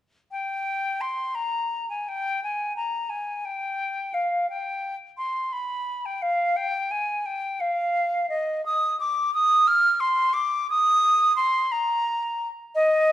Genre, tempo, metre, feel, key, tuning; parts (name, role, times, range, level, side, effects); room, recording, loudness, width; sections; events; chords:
classical, baroque-style fantasia for unaccompanied flute; 58 BPM (dotted quarters); 6/8; rubato; A4 = 440 Hz
silver concert flute; solo; 0.3-13.1 s; Eb5 to F6; -22 LUFS; equal
moderate recital hall reverb, RT60 1.4 s; dark, warm production; -22 LUFS; side -13 dB against mid
0.3-13.1 A section